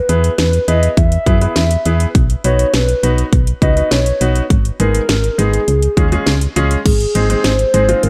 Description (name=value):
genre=synth-pop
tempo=102 BPM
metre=4/4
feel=straight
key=unclear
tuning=A4 = 441 Hz
part: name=hollow clarinet-like synth lead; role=melody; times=0.0-8.1 s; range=Ab4 to E5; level=-20 LUFS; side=equal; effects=chorus
part: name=clear baby grand piano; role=accompaniment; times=0.1-8.1 s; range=Ab3 to B4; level=-23 LUFS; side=equal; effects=none
part: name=solid FM bass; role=bass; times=0.1-8.1 s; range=Ab1 to Gb2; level=-17 LUFS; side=equal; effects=none
part: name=house drum kit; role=drums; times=0.1-8.1 s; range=crash cymbal, hi-hat, kick drum, snare drum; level=-19 LUFS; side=equal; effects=none
room=light reverb, digital ambience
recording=none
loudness=-14 LUFS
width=mono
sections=0.0-6.9 A section; 6.9-8.1 B section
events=none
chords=0.0 E; 2.1 Badd9; 4.5 Abm; 5.7 Db; 6.9 Ab